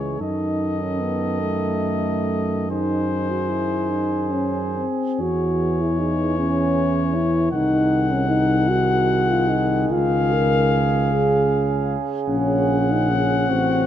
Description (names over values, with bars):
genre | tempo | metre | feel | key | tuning
classical, hymn-like piece for brass band | 45-53 BPM (dotted quarters) | 6/8 | rubato | C# minor, Db major from 7.5 s | A4 = 441 Hz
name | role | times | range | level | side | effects
warm cornet | melody | 0.0-13.9 s | B#4 to Gb5 | -26 LUFS | left 5 dB | none
mellow flugelhorn | second line | 0.0-13.9 s | Gb4 to A4 | -29 LUFS | right 12 dB | none
clear trombone | accompaniment | 0.0-13.9 s | Db3 to E3 | -30 LUFS | right 6 dB | none
mellow euphonium | accompaniment | 0.0-13.9 s | G#3 to Bb4 | -22 LUFS | left 2 dB | none
dark tuba | bass | 0.0-13.9 s | A1 to F#2 | -24 LUFS | right 1 dB | none
room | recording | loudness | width
light reverb | close, detailed microphones | -18 LUFS | side -10 dB against mid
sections
0.0-13.9 A section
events
none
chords
0.2 D#dim/F#; 2.7 G#7/F#; 5.2 C#m/E; 7.5 Ab7/C; 9.9 Db; 12.3 Gb/Bb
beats
| 0.21 1.42 | 2.71 3.91 | 5.19 6.38 | 7.52 8.69 | 9.91 11.12 | 12.29 13.49